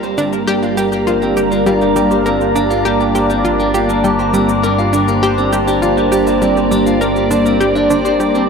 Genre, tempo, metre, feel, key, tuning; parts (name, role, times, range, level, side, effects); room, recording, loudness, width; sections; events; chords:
ambient, sequencer-driven space music; 101 BPM; 4/4; straight; A4 = 440 Hz
evolving wavetable pad; sustained chords; 0.0-8.5 s; G3 to D5; -14 LUFS; equal; phaser, built-in reverb
clean electric guitar; arpeggios; 0.0-8.4 s; Bb3 to C5; -22 LUFS; left 1 dB; auto-pan, tape echo
analog pluck; riff; 0.0-8.4 s; G3 to Bb4; -19 LUFS; right 1 dB; chorus, tape echo
fat analog bass; bass; 0.0-8.5 s; G1; -24 LUFS; equal
cabasa and woodblock; percussion; 0.0-8.5 s; -34 LUFS; right 2 dB; overdrive, tape echo
wind-like tuned noise texture; texture; 0.0-8.5 s; Bb5; -28 LUFS; right 4 dB; built-in reverb, wide subtle chorus
wet cathedral reverb, RT60 4.6 s; dreamy mix soaked in reverb; -12 LUFS; side -5 dB against mid
0.0-8.5 A section
0.0 Gm